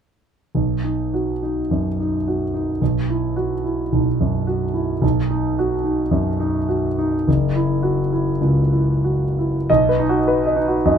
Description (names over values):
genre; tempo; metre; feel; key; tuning
classical, romantic character piece for solo piano; 88-113 BPM; 4/4; rubato; B major; A4 = 441 Hz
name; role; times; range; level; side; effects
clear concert grand piano; solo; 0.5-11.0 s; F#1 to D#5; -17 LUFS; equal; none
room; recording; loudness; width
light reverb; close, detailed microphones; -18 LUFS; side -8 dB against mid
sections
0.5-9.7 A section; 9.7-11.0 B section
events
none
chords
0.5 B; 2.8 Bsus4; 5.0 B; 7.3 F#5; 9.7 B